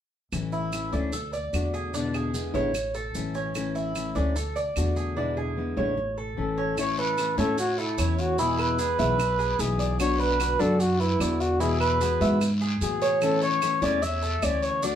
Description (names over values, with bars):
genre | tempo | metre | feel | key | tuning
latin, Cuban son and guajira | 149 BPM | 4/4 | straight | A major | A4 = 437 Hz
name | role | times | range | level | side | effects
nylon-string guitar | accompaniment | 0.3-15.0 s | B2 to F#4 | -30 LUFS | left 4 dB | none
upright bass | bass | 0.3-15.0 s | A1 to A2 | -29 LUFS | equal | none
claves | percussion | 0.3-14.6 s | none | -37 LUFS | right 5 dB | none
maracas | percussion | 0.3-15.0 s | none | -40 LUFS | right 3 dB | none
Cuban tres | arpeggios | 0.5-15.0 s | C#4 to E5 | -30 LUFS | right 3 dB | none
trumpet with bucket mute | melody | 6.4-15.0 s | E4 to E5 | -26 LUFS | equal | none
guiro | percussion | 6.8-15.0 s | none | -38 LUFS | left 3 dB | none
room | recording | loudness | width
wet studio reverb, RT60 0.5 s | band playing live in one room | -23 LUFS | side -9 dB against mid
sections
0.3-6.8 A section; 6.8-15.0 B section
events
none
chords
0.3 A; 1.1 D; 1.9 E7; 2.7 A; 4.4 D; 5.2 E7; 6.0 A; 8.4 E; 10.0 Bm; 11.6 Eadd9; 13.2 A